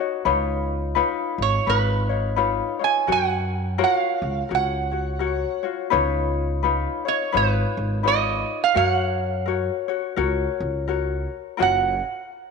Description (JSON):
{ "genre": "Hawaiian", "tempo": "85 BPM", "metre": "4/4", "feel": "swing 60% on 8ths", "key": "F# major", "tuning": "A4 = 440 Hz", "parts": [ { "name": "ukulele", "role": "accompaniment", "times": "0.0-11.9 s", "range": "D#4 to C#5", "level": "-24 LUFS", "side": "left 10 dB", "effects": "none" }, { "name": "upright bass", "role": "bass", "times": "0.3-12.0 s", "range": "F#1 to F#2", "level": "-26 LUFS", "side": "right 1 dB", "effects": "none" }, { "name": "lap resonator guitar", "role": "melody", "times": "1.4-12.0 s", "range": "B4 to G#5", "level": "-23 LUFS", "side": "right 10 dB", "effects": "none" } ], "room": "wet echo chamber reverb, RT60 2.1 s", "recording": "1960s-style stereo with parts hard left and right", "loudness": "-20 LUFS", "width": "side -4 dB against mid", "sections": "0.0-5.9 A section; 5.9-11.6 B section", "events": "none", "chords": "0.3 C#9; 3.1 F#maj7; 5.9 C#9; 8.8 F#; 11.6 F#maj7" }